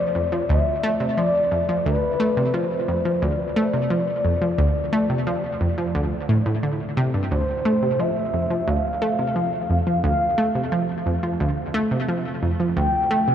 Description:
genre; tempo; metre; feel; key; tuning
ambient; 88 BPM; 4/4; straight; D dorian; A4 = 438 Hz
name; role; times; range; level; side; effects
expressive synth lead; melody; 0.0-13.3 s; B4 to G5; -24 LUFS; left 1 dB; wide subtle chorus, tape echo
analog pluck; riff; 0.2-13.3 s; D2 to A3; -21 LUFS; equal; chorus, tape echo
room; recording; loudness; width
wet huge ambient reverb, RT60 7.6 s; in a vast, echoing space, cassette tape; -20 LUFS; side -9 dB against mid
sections
0.0-13.3 A section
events
none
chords
0.0 Dm7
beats
0.49 1.17 | 1.86 2.54 3.22 3.90 | 4.58 5.26 5.95 6.63 | 7.31 7.99 8.67 9.36 | 10.04 10.72 11.40 12.08 | 12.77

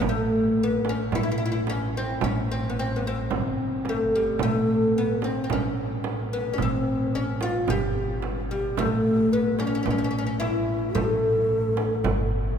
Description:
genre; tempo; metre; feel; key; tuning
Arabic maqam ensemble; 110 BPM; 4/4; straight; A maqam saba; A4 = 445 Hz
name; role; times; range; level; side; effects
oud; melody; 0.0-12.6 s; G3 to G4; -25 LUFS; left 1 dB; none
upright bass; bass; 0.0-12.6 s; G1 to A1; -30 LUFS; equal; none
darbuka; percussion; 0.0-12.3 s; none; -35 LUFS; right 4 dB; none
frame drum; percussion; 0.0-12.2 s; none; -31 LUFS; right 4 dB; none
breathy mellow low ney; second line; 4.4-12.6 s; C4 to B4-40c; -30 LUFS; left 1 dB; none
room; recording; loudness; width
wet cathedral reverb, RT60 7.2 s; recorded in a church or concert hall; -22 LUFS; side -7 dB against mid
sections
0.0-12.6 A section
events
none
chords
none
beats
| 0.04 0.58 1.13 1.68 | 2.22 2.77 3.31 3.86 | 4.41 4.95 5.50 6.05 | 6.59 7.14 7.68 8.23 | 8.78 9.32 9.87 10.42 | 10.96 11.51 12.05

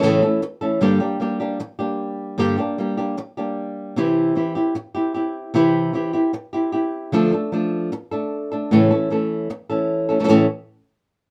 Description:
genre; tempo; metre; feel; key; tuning
flamenco; 152 BPM; 4/4; straight; unclear; A4 = 440 Hz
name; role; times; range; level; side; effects
flamenco guitar; solo; 0.0-10.5 s; G2 to A4; -21 LUFS; equal; none
room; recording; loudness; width
moderate studio reverb, RT60 0.5 s; none; -21 LUFS; mono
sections
0.0-10.3 A section; 10.3-11.3 B section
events
none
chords
0.0 A; 0.8 Gm; 4.0 C; 7.1 Dm; 8.7 A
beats
0.03 0.42 | 0.82 1.21 1.60 2.00 | 2.39 2.79 3.18 3.58 | 3.97 4.37 4.76 5.16 | 5.55 5.95 6.34 6.74 | 7.13 7.53 7.92 8.32 | 8.71 9.11 9.51 9.90 | 10.30

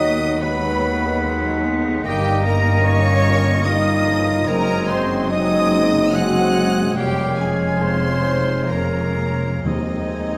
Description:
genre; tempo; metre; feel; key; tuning
classical, slow romantic movement for symphony orchestra; 59-76 BPM; 3/4; rubato; Ab major; A4 = 440 Hz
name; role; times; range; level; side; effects
rich studio violin section; melody; 0.0-10.4 s; Eb5 to Gb6; -32 LUFS; equal; none
clear oboe; second line; 0.0-10.4 s; Eb5 to F#5; -32 LUFS; equal; none
mellow hollow silver concert flute; second line; 0.0-10.4 s; Ab6 to B6; -30 LUFS; equal; none
rich studio violin section; second line; 0.0-10.4 s; Eb4 to Gb5; -33 LUFS; equal; none
rich studio viola section; accompaniment; 0.0-10.4 s; F3 to F4; -30 LUFS; equal; none
warm bassoon; accompaniment; 0.0-10.4 s; F#3 to Db4; -31 LUFS; equal; none
bright trombone section; sustained chords; 0.0-10.4 s; C3 to Bb3; -31 LUFS; equal; none
dark French horn section; sustained chords; 0.0-10.4 s; Eb3 to Gb4; -28 LUFS; equal; none
concert harp; arpeggios; 0.0-10.4 s; F2 to D#5; -32 LUFS; equal; none
clear trumpet section; stabs; 0.0-10.4 s; Eb4 to Gb5; -28 LUFS; equal; none
rich studio cello section; bass; 0.0-10.4 s; D#2 to G2; -26 LUFS; equal; none
warm studio double bass section; bass; 0.0-10.4 s; F1 to D#2; -27 LUFS; equal; none
timpani; percussion; 0.0-0.8, 9.7-10.4 s; D#3; -31 LUFS; equal; none
room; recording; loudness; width
wet recital hall reverb, RT60 1.5 s; none; -19 LUFS; mono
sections
0.0-10.4 A section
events
none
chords
0.0 B/D#; 2.1 Eb/G; 4.5 Ab7/Gb; 7.0 Db/F; 8.7 Bbm7/F; 9.7 Ab/Eb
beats
0.42 1.24 | 2.05 2.84 3.65 | 4.47 5.30 6.14 | 6.97 7.81 8.70 | 9.66

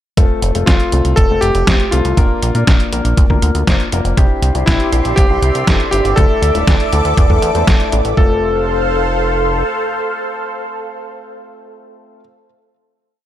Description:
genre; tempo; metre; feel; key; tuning
italo disco; 120 BPM; 4/4; straight; F major; A4 = 440 Hz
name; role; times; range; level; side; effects
warm baby grand piano; stabs; 0.2-12.2 s; A3 to C5; -22 LUFS; left 5 dB; none
chorused synth bass; bass; 0.2-9.6 s; D1 to Bb2; -16 LUFS; equal; none
detuned 8-bit digital drum machine; drums; 0.2-8.1 s; hi-hat, snare drum; -19 LUFS; equal; none
electronic kick drum; drums; 0.2-8.3 s; none; -13 LUFS; equal; none
bright electric grand piano; melody; 0.7-12.2 s; E4 to A4; -19 LUFS; equal; tape echo
lush unison pad; sustained chords; 4.6-12.2 s; G4 to D6; -19 LUFS; equal; chorus, phaser
room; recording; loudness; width
light reverb, digital ambience; dark, warm production; -11 LUFS; side -12 dB against mid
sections
0.2-8.2 verse; 8.2-12.2 final chord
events
none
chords
0.2 F; 2.2 Bb; 4.2 Cadd9; 6.2 Dsus2; 8.2 F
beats
| 0.17 0.67 1.17 1.67 | 2.17 2.67 3.17 3.67 | 4.17 4.67 5.17 5.67 | 6.17 6.67 7.17 7.67 | 8.17 8.67 9.17 9.67 | 10.17 10.67 11.17 11.67

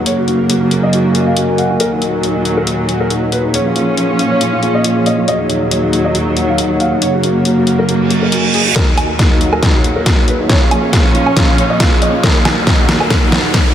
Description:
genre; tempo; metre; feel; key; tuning
heavy wobble dubstep; 138 BPM; 4/4; swing 54% on 16ths, half-time; Eb minor; A4 = 439 Hz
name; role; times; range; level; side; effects
felt-muted upright piano; melody; 0.0-13.7 s; Eb4 to Gb5; -18 LUFS; left 1 dB; diffuse ambient delay
rich studio string section; sustained chords; 0.0-13.7 s; Eb2 to Db4; -16 LUFS; right 1 dB; sidechain pumping
warbly tape-like pad; texture; 0.0-13.7 s; Gb3 to Ab5; -20 LUFS; equal; chorus, built-in reverb, sidechain pumping
dubstep drum kit; drums; 0.1-13.6 s; hi-hat, snare drum, woodblock; -16 LUFS; equal; none
reverse cymbal and riser; sound effects; 8.1-13.7 s; none; -21 LUFS; right 2 dB; none
electronic kick drum; drums; 8.8-13.6 s; none; -13 LUFS; equal; none
room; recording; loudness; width
moderate huge ambient reverb, RT60 4.5 s; dreamy mix soaked in reverb; -11 LUFS; side -10 dB against mid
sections
0.0-8.8 A section; 8.8-13.7 B section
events
reverse cymbal 8.1-8.8; build-up 8.8-13.7; drum fill 8.8-13.7; riser 8.8-13.7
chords
0.1 Gb; 1.8 Ebm; 3.5 Bbm; 5.3 Ebm; 7.0 Gb; 8.8 Ebm; 10.5 Bbm; 12.2 Ebm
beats
| 0.06 0.50 0.93 1.36 | 1.80 2.23 2.67 3.10 | 3.54 3.97 4.41 4.84 | 5.28 5.71 6.15 6.58 | 7.02 7.45 7.89 8.32 | 8.76 9.19 9.63 10.06 | 10.50 10.93 11.37 11.80 | 12.23 12.67 13.10 13.54

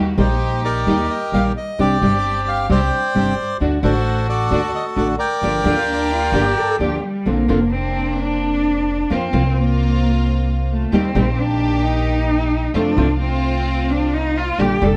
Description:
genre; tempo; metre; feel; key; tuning
tango; 131 BPM; 4/4; rubato; G minor, Bb major from 7.3 s; A4 = 443 Hz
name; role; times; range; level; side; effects
warm cello; second line; 0.0, 5.7-15.0 s; G3 to A4; -23 LUFS; equal; none
nylon-string guitar; accompaniment; 0.0-14.9 s; C3 to G4; -22 LUFS; equal; none
warm studio string section; stabs; 0.0-15.0 s; Eb3 to G4; -30 LUFS; equal; none
upright bass; bass; 0.0-15.0 s; F1 to F2; -23 LUFS; equal; none
bandoneon; melody; 0.2-6.8 s; Eb4 to G5; -22 LUFS; equal; none
room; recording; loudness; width
moderate large studio reverb, RT60 1.1 s; none; -18 LUFS; mono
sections
0.0-7.3 A section; 7.3-15.0 B section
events
cello solo 7.3-15.0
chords
0.0 Eb; 1.8 Csus2; 3.6 D; 5.4 Gm7; 7.3 Bbadd9; 9.1 Fsus4; 10.9 Eb; 12.7 F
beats
0.41 0.87 1.33 | 1.79 2.25 2.70 3.15 | 3.61 4.06 4.51 4.96 | 5.42 5.88 6.34 6.80 | 7.26 7.73 8.19 8.65 | 9.11 9.56 10.02 10.47 | 10.93 11.38 11.84 12.29 | 12.74 13.20 13.66 14.13 | 14.59

